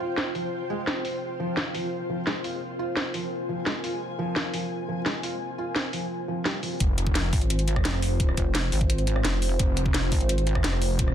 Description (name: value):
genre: dark technical drum and bass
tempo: 172 BPM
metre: 4/4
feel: straight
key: F minor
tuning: A4 = 440 Hz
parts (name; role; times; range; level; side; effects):
- dark analog pad; sustained chords; 0.0-11.1 s; C4 to C5; -34 LUFS; right 1 dB; chorus, sidechain pumping
- felt-muted upright piano; arpeggios; 0.0-6.7 s; F3 to F4; -32 LUFS; right 2 dB; sidechain pumping, dub echo
- ethereal airy pad; texture; 0.0-6.8 s; F4 to Ab5; -34 LUFS; left 2 dB; ensemble chorus, built-in reverb, sidechain pumping
- drum and bass drum kit; drums; 0.2-11.1 s; hi-hat, rim click, snare drum; -29 LUFS; equal; low-pass filter on snare, low-pass filter on hats, low-pass filter on room
- wide detuned saw bass; bass; 6.8-11.1 s; F1; -26 LUFS; equal; chorus
- electronic kick drum; drums; 6.8-11.1 s; none; -25 LUFS; equal; none
- pulsing pluck wobble bass; bass; 7.3-10.6 s; F1 to Ab1; -25 LUFS; equal; chorus, tube saturation
room: light reverb, digital ambience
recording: dense, heavily limited modern master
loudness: -24 LUFS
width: side -10 dB against mid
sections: 0.0-6.8 A section; 6.8-11.1 B section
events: drop 6.8-11.1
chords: 0.0 F5